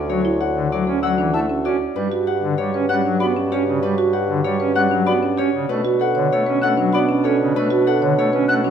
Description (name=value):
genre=classical, minimalist pattern music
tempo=193 BPM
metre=6/4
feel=straight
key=unclear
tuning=A4 = 441 Hz
part: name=Celtic harp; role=melody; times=0.0-8.7 s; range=B4 to F#5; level=-23 LUFS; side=left 7 dB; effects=none
part: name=mellow clarinet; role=second line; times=0.0-8.7 s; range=D4 to F#4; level=-27 LUFS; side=right 2 dB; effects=none
part: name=warm bassoon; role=bass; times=0.0-8.7 s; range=D2 to B2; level=-24 LUFS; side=equal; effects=none
part: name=pipe organ, foundations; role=accompaniment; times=0.1-8.7 s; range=C#3 to C#4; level=-23 LUFS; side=right 1 dB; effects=none
part: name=marimba with soft mallets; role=arpeggios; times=0.2-8.7 s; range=C#4 to C#5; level=-22 LUFS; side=right 6 dB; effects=none
part: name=bright concert flute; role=arpeggios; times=1.0-8.5 s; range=A5 to F#6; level=-26 LUFS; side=left 2 dB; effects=none
room=wet large studio reverb, RT60 1.2 s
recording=none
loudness=-16 LUFS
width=side -8 dB against mid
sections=0.0-8.7 A section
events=none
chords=0.0 Dmaj7; 2.0 Gmaj7; 5.7 Bm7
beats=| 0.09 0.40 0.71 1.03 1.34 1.65 | 1.96 2.27 2.58 2.89 3.20 3.51 | 3.82 4.13 4.45 4.76 5.07 5.38 | 5.69 6.00 6.31 6.62 6.93 7.24 | 7.55 7.87 8.18 8.49